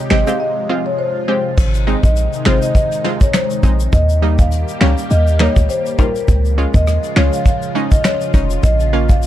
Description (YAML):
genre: dancehall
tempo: 102 BPM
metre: 4/4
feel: swing 56% on 16ths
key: unclear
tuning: A4 = 441 Hz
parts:
  - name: lush unison pad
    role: sustained chords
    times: 0.0-9.3 s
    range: C3 to G4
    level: -24 LUFS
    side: left 1 dB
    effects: chorus, phaser
  - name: marimba with medium mallets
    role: melody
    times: 0.1-9.3 s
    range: Bb4 to F5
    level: -20 LUFS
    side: left 1 dB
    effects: tape echo
  - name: analog pluck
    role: accompaniment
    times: 0.1-9.1 s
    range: G3 to G4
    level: -20 LUFS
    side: right 2 dB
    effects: chorus
  - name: warm 808-style bass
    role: bass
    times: 0.1-9.3 s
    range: F1 to Eb2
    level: -15 LUFS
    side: equal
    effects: none
  - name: soft brush drum kit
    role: drums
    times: 0.1-9.3 s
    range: crash cymbal, finger snaps, hi-hat, kick drum, rim click, snare drum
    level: -15 LUFS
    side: equal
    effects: none
  - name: tube shaker and timbales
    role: percussion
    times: 0.3-9.3 s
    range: none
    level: -31 LUFS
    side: left 9 dB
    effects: none
room: little or no reverb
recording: dark, warm production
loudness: -12 LUFS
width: side -12 dB against mid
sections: 0.0-1.6 A section; 1.6-9.3 B section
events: break 0.4-1.6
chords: 0.4 Fm; 1.6 Ab; 3.9 Eb; 6.3 Db; 8.6 Bbm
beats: 0.40 0.99 | 1.58 2.17 2.75 3.34 | 3.93 4.52 5.11 5.69 | 6.28 6.87 7.46 8.05 | 8.63 9.22